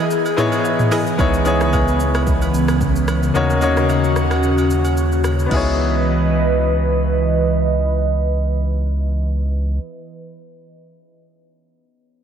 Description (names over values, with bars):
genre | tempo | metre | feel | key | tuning
amapiano | 111 BPM | 4/4 | swing 55% on 16ths | C# minor | A4 = 440 Hz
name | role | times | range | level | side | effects
bright concert grand piano | accompaniment | 0.0-12.2 s | A#3 to D#5 | -21 LUFS | left 3 dB | low-pass filter
airy breathy pad | sustained chords | 0.0-9.8 s | C#3 to D#5 | -20 LUFS | right 1 dB | chorus, phaser, sidechain pumping, low-pass filter
afro-pop drum kit | drums | 0.1-5.7 s | crash cymbal, hi-hat, kick drum, rim click, shaker, toms | -24 LUFS | equal | none
agogo bells and woodblock | percussion | 0.3-5.8 s | none | -32 LUFS | right 6 dB | none
analog pluck | stabs | 0.4-1.2 s | E4 to D#5 | -27 LUFS | right 1 dB | none
warm sub bass | bass | 1.2-9.8 s | C#2 to D#2 | -19 LUFS | equal | none
room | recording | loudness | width
wet lush hall reverb, RT60 2.5 s | dreamy mix soaked in reverb | -15 LUFS | side -8 dB against mid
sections
0.0-1.2 A section; 1.2-5.5 B section; 5.5-9.8 C section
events
break 0.0-1.2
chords
0.0 Emaj7; 1.2 C#m9; 3.4 D#m7; 5.5 C#m9